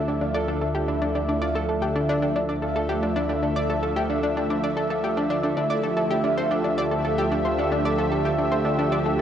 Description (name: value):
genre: ambient, sequencer-driven space music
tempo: 112 BPM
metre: 4/4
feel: straight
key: D minor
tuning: A4 = 439 Hz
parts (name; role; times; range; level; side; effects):
- lush unison pad; sustained chords; 0.0-9.2 s; D3 to E5; -25 LUFS; equal; chorus, cassette tape, shimmer reverb
- Celtic harp; arpeggios; 0.0-9.2 s; D4 to A4; -29 LUFS; right 3 dB; auto-pan, low-pass filter, cassette tape, ping-pong delay, shimmer reverb
- fat analog bass; bass; 0.0-9.2 s; D2; -33 LUFS; equal; none
- analog pluck; riff; 0.1-9.2 s; D4 to D5; -27 LUFS; left 1 dB; chorus, cassette tape, ping-pong delay, shimmer reverb
room: wet lush hall reverb, RT60 2.3 s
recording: home recording on cassette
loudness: -21 LUFS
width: side -9 dB against mid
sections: 0.0-9.2 A section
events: none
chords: 0.0 Dmadd9